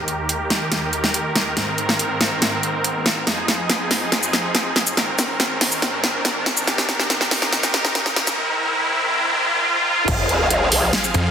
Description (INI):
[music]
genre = heavy wobble dubstep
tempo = 141 BPM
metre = 4/4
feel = half-time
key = unclear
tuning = A4 = 440 Hz
[part]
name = supersaw chords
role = sustained chords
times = 0.0-11.3 s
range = Eb2 to F5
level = -22 LUFS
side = right 1 dB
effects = sidechain pumping, low-pass filter
[part]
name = riser and sub drop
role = sound effects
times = 0.1-11.3 s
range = none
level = -25 LUFS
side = equal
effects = none
[part]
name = dubstep drum kit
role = drums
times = 0.1-11.2 s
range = crash cymbal, hi-hat, shaker, snare drum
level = -20 LUFS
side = equal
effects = small room ambience
[part]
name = growl bass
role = bass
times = 10.1-10.9 s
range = F1 to C2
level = -19 LUFS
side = left 1 dB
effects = chorus, overdrive
[part]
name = electronic kick drum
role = drums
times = 10.1-10.2 s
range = none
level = -24 LUFS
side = equal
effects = overdrive, small room ambience
[part]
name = snarling distorted saw bass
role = bass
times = 11.1-11.3 s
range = F2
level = -17 LUFS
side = equal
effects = distortion, overdrive
[sound]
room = moderate digital room reverb, RT60 1.2 s, digital ambience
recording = dense, heavily limited modern master, high-pass filter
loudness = -17 LUFS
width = side -8 dB against mid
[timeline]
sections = 0.0-10.1 A section; 10.1-11.3 B section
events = build-up 0.0-10.1; drum fill 0.0-8.4; filter sweep on supersaw synth 0.0-10.1; riser 0.1-10.1; drop 10.1-11.3; impact 10.1-11.3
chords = 0.0 Eb; 1.6 Abadd9; 3.3 Fm7; 5.0 Abadd9; 6.7 Eb; 8.4 Abadd9; 10.1 Fm